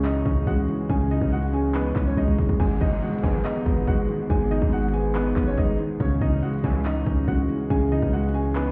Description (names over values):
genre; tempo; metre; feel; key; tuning
hip hop, trap; 141 BPM; 4/4; half-time; G# minor; A4 = 440 Hz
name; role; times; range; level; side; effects
bright concert grand piano; melody; 0.0-8.7 s; B3 to G#5; -32 LUFS; equal; none
felt-muted upright piano; accompaniment; 0.0-8.7 s; G#2 to D#4; -29 LUFS; equal; none
dark analog pad; sustained chords; 0.0-8.7 s; E3 to D#5; -34 LUFS; equal; none
long sustained 808-style bass; bass; 0.0-8.7 s; G#1 to C#2; -28 LUFS; equal; none
trap drum kit; drums; 0.0-8.7 s; crash cymbal, handclaps, hi-hat, kick drum; -28 LUFS; equal; none
downlifter; sound effects; 2.6-6.0 s; none; -40 LUFS; equal; none
sync-sweep polysynth; stabs; 3.2-3.4, 6.6-6.8 s; B1 to E3; -35 LUFS; equal; chorus
room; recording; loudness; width
little or no reverb; heard muffled through a wall, stone room reverb, EQ; -23 LUFS; mono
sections
0.0-2.6 A section; 2.6-8.7 B section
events
drum fill 2.2-2.6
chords
0.0 C#madd9; 2.6 G#m; 6.0 C#madd9